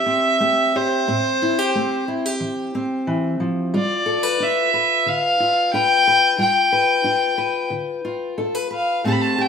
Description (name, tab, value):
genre	folk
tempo	90 BPM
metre	4/4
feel	straight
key	unclear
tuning	A4 = 442 Hz
part	warm fiddle	melody	0.0-9.5 s	C5 to B5	-18 LUFS	left 1 dB	slapback echo
part	fingerpicked steel-string acoustic guitar	accompaniment	0.0-9.5 s	A2 to C5	-22 LUFS	left 1 dB	none
room	light reverb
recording	rough home demo mix, studio ambience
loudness	-17 LUFS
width	side -6 dB against mid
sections	0.0-9.5 A section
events	none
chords	0.0 Am7; 3.7 G7